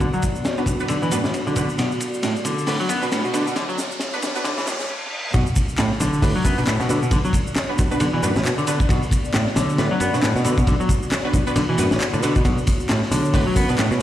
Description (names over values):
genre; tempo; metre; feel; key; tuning
breakbeat, breaks; 135 BPM; 4/4; swing 58% on 16ths; B minor; A4 = 440 Hz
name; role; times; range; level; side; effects
dark analog pad; sustained chords; 0.0-14.0 s; B3 to D5; -30 LUFS; left 2 dB; chorus, sidechain pumping
semi-hollow electric guitar; riff; 0.0-14.0 s; A2 to B3; -23 LUFS; equal; tube saturation, lush chorus, low-pass filter, tape echo
picked electric bass; bass; 0.0-14.0 s; A1 to B2; -25 LUFS; equal; tube saturation, low-pass filter
crunchy breakbeat drum kit; drums; 0.0-14.0 s; hi-hat, kick drum, ride cymbal, snare drum; -23 LUFS; equal; low-pass filter on kick, low-pass filter on cymbals, low-pass filter on hats, low-pass filter on snare, low-pass filter on room
house drum kit; drums; 0.0-14.0 s; handclaps, hi-hat, shaker; -31 LUFS; equal; overdrive
riser, reverse cymbal and sub drop; sound effects; 2.4-7.1 s; none; -32 LUFS; equal; none
orchestra-hit-like synth stab; stabs; 0.6-13.9 s; B3 to B4; -27 LUFS; right 1 dB; built-in reverb, tape echo
room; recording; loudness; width
light reverb, small room ambience; played on a big sound system in a bare room, stone room reverb, high-pass filter; -18 LUFS; side -12 dB against mid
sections
0.0-5.3 A section; 5.3-14.0 B section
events
build-up 0.0-5.3; filter sweep on drum 0.0-5.3; filter sweep on clean electric guitar 0.0-5.3; filter sweep 0.0-5.3; drum fill 1.8-4.9; riser 2.4-4.9; reverse cymbal 4.5-5.3; stop 4.9-5.3; drop 5.3-14.0; impact 5.3-7.1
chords
0.0 Bm